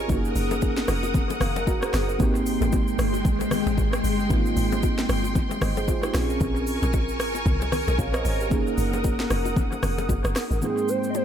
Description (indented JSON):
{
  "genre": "amapiano",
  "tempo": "114 BPM",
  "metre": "4/4",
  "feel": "swing 58% on 16ths",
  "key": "Ab major",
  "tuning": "A4 = 440 Hz",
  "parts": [
    { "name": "mellow FM electric piano", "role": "accompaniment", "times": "0.0-11.2 s", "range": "Ab2 to Bb5", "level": "-29 LUFS", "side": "right 2 dB", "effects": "chorus, dub echo" },
    { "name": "string machine, violas", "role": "sustained chords", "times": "0.0-11.2 s", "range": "Ab3 to Eb6", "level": "-28 LUFS", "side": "left 1 dB", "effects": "ensemble chorus, sidechain pumping" },
    { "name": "deep log drum bass", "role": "bass", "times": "0.0-10.6 s", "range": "F1 to C2", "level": "-27 LUFS", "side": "equal", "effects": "none" },
    { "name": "afro-pop drum kit", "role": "drums", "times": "0.1-11.2 s", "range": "hi-hat, kick drum, rim click, shaker, snare drum", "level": "-27 LUFS", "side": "equal", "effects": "dub echo" },
    { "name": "congas and bongos", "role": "percussion", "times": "0.1-11.2 s", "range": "none", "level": "-33 LUFS", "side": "left 7 dB", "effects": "dub echo" },
    { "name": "hollow clarinet-like synth lead", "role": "melody", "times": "10.6-11.2 s", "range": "Ab4 to Eb5", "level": "-25 LUFS", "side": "right 2 dB", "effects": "chorus" }
  ],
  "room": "light reverb",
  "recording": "echo-heavy mix",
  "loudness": "-21 LUFS",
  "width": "side -9 dB against mid",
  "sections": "0.0-10.6 A section",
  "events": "drop 0.0-10.6; FM electric piano fill 1.1-2.2",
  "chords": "0.1 Gb6; 2.2 Abmaj7; 6.1 Bbm7; 8.5 Gb6; 10.6 Abmaj7"
}